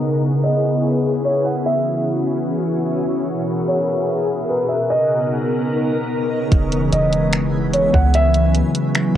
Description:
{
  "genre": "hip hop, atmospheric cloud-rap",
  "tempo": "148 BPM",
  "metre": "4/4",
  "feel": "half-time",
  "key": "unclear",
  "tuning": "A4 = 440 Hz",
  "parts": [
    { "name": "glassy FM pad", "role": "sustained chords", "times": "0.0-9.2 s", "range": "B2 to A#4", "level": "-19 LUFS", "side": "left 1 dB", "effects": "ensemble chorus, built-in reverb, sidechain pumping, cassette tape" },
    { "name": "backwards swelling texture", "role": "texture", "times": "0.0-9.2 s", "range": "B3 to D#6", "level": "-28 LUFS", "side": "right 1 dB", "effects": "built-in reverb, cassette tape" },
    { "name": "felt-muted upright piano", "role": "melody", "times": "0.4-8.5 s", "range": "B4 to F#5", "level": "-20 LUFS", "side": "right 1 dB", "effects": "cassette tape, tape echo" },
    { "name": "soft 808-style bass", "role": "bass", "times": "6.5-8.6 s", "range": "E1 to C#2", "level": "-19 LUFS", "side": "equal", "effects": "none" },
    { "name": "smooth R&B drum kit", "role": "drums", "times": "6.5-9.0 s", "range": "finger snaps, hi-hat, kick drum", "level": "-18 LUFS", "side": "equal", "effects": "none" }
  ],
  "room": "light reverb",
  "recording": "home recording on cassette, low-pass filter",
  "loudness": "-16 LUFS",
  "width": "side -11 dB against mid",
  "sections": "0.0-6.5 A section; 6.5-9.2 B section",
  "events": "filter sweep 0.0-6.5",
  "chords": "0.0 E6; 1.7 C#m11; 3.3 G#m9; 4.9 Bmaj9; 6.5 E6; 8.1 C#m11"
}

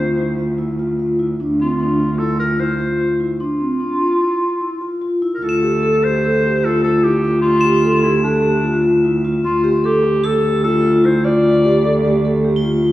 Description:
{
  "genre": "contemporary instrumental, chamber music in an uneven meter",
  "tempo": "149 BPM",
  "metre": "5/4",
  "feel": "straight",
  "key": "D minor",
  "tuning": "A4 = 439 Hz",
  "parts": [
    { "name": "clear clarinet", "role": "melody", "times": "0.0-12.4 s", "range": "D4 to D5", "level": "-20 LUFS", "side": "left 1 dB", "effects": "none" },
    { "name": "vibraphone with soft mallets", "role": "arpeggios", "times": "0.0-12.9 s", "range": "C4 to A4", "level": "-17 LUFS", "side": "left 1 dB", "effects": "none" },
    { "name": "warm cello", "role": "bass", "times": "0.0-12.9 s", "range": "D2", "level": "-20 LUFS", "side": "right 1 dB", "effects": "none" },
    { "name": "crotales", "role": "texture", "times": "5.5-12.9 s", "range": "E7 to A7", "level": "-28 LUFS", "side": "left 6 dB", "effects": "none" }
  ],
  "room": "wet recital hall reverb, RT60 1.4 s",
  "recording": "heard from further back in the room",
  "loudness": "-14 LUFS",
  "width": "side -15 dB against mid",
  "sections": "0.0-5.4 A section; 5.4-12.9 B section",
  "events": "none",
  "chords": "0.0 Dm7; 5.4 Dm"
}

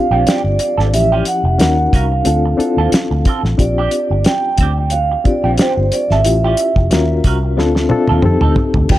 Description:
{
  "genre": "lush 1970s-style soul",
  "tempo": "90 BPM",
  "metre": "4/4",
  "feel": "swing 54% on 16ths",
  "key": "Bb major",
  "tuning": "A4 = 440 Hz",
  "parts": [
    { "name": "vibraphone with soft mallets", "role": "melody", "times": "0.0-9.0 s", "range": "C5 to G5", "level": "-18 LUFS", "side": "right 3 dB", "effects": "tape echo" },
    { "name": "reed electric piano", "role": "accompaniment", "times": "0.0-9.0 s", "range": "F3 to Bb4", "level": "-18 LUFS", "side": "left 4 dB", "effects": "fast tremolo" },
    { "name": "electric guitar through a small old amp", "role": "riff", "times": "0.1-8.9 s", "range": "C4 to Bb4", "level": "-24 LUFS", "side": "right 6 dB", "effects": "wah" },
    { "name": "vintage muted fingered electric bass", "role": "bass", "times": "0.1-9.0 s", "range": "F1 to F2", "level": "-16 LUFS", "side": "equal", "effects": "none" },
    { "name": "cloth-damped thuddy drum kit", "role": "drums", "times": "0.3-9.0 s", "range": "crash cymbal, hi-hat, kick drum, snare drum, toms", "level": "-16 LUFS", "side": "equal", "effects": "none" }
  ],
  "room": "small room ambience",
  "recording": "none",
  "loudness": "-12 LUFS",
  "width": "side -14 dB against mid",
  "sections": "0.0-8.9 A section",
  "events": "drum fill 7.6-8.9",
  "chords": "0.0 Bb69; 0.9 A7b13; 1.6 Ebm7; 2.3 Dm7; 3.6 Bb69; 6.2 A7b13; 6.9 Ebm7; 7.6 Dm7; 8.2 F7"
}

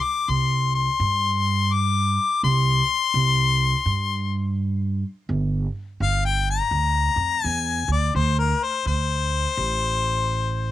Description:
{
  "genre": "acoustic country blues, solo or duo",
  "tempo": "84 BPM",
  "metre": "4/4",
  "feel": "swing 63% on 8ths",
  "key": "unclear",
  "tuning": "A4 = 442 Hz",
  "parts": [
    { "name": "bright harmonica", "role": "melody", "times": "0.0-10.7 s", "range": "Bb4 to D6", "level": "-22 LUFS", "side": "left 6 dB", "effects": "none" },
    { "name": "upright bass", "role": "bass", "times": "0.3-10.7 s", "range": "G1 to G2", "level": "-23 LUFS", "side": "right 2 dB", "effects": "none" }
  ],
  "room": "small room ambience",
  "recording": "home recording on cassette",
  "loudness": "-20 LUFS",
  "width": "side -13 dB against mid",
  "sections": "0.0-10.7 A section",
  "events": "harmonica solo 0.0-10.7",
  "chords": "0.0 C5; 5.3 G5; 8.1 D5"
}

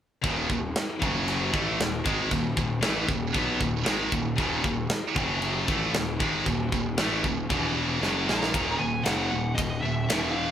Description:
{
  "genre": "heavy metal",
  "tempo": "116 BPM",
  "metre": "4/4",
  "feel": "straight",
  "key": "Eb phrygian",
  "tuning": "A4 = 439 Hz",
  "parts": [
    { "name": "heavy high-gain guitar", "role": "riff", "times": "0.2-10.5 s", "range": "Eb2 to Cb4", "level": "-30 LUFS", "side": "right 7 dB", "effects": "distortion" },
    { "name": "scooped high-gain guitar", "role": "riff", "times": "0.2-10.5 s", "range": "Eb2 to Cb4", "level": "-29 LUFS", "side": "left 5 dB", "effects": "distortion" },
    { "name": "fuzz picked electric bass", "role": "bass", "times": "0.2-10.5 s", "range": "Eb1 to Cb2", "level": "-32 LUFS", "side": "equal", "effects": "overdrive" },
    { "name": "tight metal drum kit", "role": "drums", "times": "0.2-10.2 s", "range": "china cymbal, kick drum, ride cymbal, snare drum", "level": "-29 LUFS", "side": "equal", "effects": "none" },
    { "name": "high-gain lead guitar", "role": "melody", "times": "8.3-10.5 s", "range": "Eb5 to Bb5", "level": "-31 LUFS", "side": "right 1 dB", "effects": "distortion" }
  ],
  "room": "moderate stone room reverb, RT60 1.3 s",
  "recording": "band playing live in one room",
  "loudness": "-24 LUFS",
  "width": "side -9 dB against mid",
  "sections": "0.2-8.5 A section; 8.5-10.5 B section",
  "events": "drum fill 8.0-8.5",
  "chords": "0.2 Eb5; 1.0 Gb5; 1.5 Ebm; 5.2 Gb5; 5.7 Eb5; 7.5 E5; 8.0 Gbmaj7; 8.5 Ebm"
}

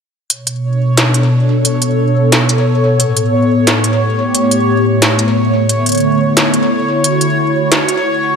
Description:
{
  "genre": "IDM",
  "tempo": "89 BPM",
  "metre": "4/4",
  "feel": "straight",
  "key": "B minor",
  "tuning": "A4 = 440 Hz",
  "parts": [
    { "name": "hollow soft pad", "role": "sustained chords", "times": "0.3-8.4 s", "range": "A2 to C#5", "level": "-12 LUFS", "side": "equal", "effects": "ensemble chorus" },
    { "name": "industrial drum kit", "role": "drums", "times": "0.3-8.0 s", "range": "hi-hat, snare drum", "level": "-15 LUFS", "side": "equal", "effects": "none" },
    { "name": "bubbling stepped-filter texture", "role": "texture", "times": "0.7-8.4 s", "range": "C#5", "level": "-19 LUFS", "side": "equal", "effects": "chorus, built-in reverb" }
  ],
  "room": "light reverb",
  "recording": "none",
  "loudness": "-10 LUFS",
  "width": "side -6 dB against mid",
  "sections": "0.3-8.4 A section",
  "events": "none",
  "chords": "0.3 Bm9; 3.0 A7; 5.7 Dmaj9"
}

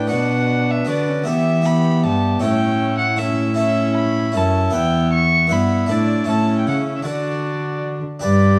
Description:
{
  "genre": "classical, renaissance-style consort dance",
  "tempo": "156 BPM",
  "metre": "3/4",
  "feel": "straight",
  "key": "D major",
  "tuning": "A4 = 440 Hz",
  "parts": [
    { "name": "dark violin", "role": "melody", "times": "0.0-8.6 s", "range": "D5 to C#6", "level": "-26 LUFS", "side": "equal", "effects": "none" },
    { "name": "warm cor anglais", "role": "second line", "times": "0.0-8.6 s", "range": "E4 to D5", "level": "-28 LUFS", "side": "equal", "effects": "none" },
    { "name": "harpsichord", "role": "accompaniment", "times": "0.0-8.6 s", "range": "E2 to B4", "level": "-26 LUFS", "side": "equal", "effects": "none" },
    { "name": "warm viola", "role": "accompaniment", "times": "0.0-8.6 s", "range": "B3 to G4", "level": "-26 LUFS", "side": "equal", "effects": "none" },
    { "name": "dark cello", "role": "bass", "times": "0.0-8.6 s", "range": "E2 to E3", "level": "-22 LUFS", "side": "equal", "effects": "none" }
  ],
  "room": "moderate stone room reverb, RT60 1.2 s",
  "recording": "dark, warm production",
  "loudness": "-18 LUFS",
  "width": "mono",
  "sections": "0.0-8.2 A section",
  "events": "none",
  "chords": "0.1 Bm; 1.3 Em; 2.4 A; 4.7 Em; 5.9 Asus4; 6.3 A; 7.1 D"
}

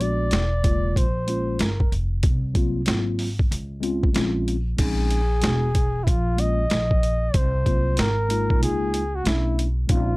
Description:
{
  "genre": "hip hop, jazz-hop",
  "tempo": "94 BPM",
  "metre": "4/4",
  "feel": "swing 63% on 16ths",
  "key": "unclear",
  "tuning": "A4 = 437 Hz",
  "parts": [
    { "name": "breathy flugelhorn", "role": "melody", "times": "0.0-10.2 s", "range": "E4 to Eb5", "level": "-27 LUFS", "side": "equal", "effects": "none" },
    { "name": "mellow tine electric piano", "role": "accompaniment", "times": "0.0-10.2 s", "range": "Db3 to Gb4", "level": "-27 LUFS", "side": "left 1 dB", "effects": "medium stereo tremolo" },
    { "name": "upright bass", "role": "bass", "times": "0.0-10.2 s", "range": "E1 to Db2", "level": "-24 LUFS", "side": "equal", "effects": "transformer saturation" },
    { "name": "boom bap sampler-style drum kit", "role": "drums", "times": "0.0-10.1 s", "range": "crash cymbal, hi-hat, kick drum, snare drum", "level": "-22 LUFS", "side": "equal", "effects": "none" }
  ],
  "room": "little or no reverb",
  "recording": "dry, gritty hardware recording",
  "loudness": "-20 LUFS",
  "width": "side -22 dB against mid",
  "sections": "0.0-4.8 A section; 4.8-10.2 A section",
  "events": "none",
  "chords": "0.3 E7; 1.0 Bbm13; 2.2 Gbmaj7#11/C; 2.9 Ab13; 3.5 Db; 4.2 Bbm9; 4.8 Bbm11; 5.4 E9; 6.1 Eb9sus4/Bb; 7.3 Gbmaj7#11/C; 8.0 Absus2; 8.6 Db69; 9.3 Bm11"
}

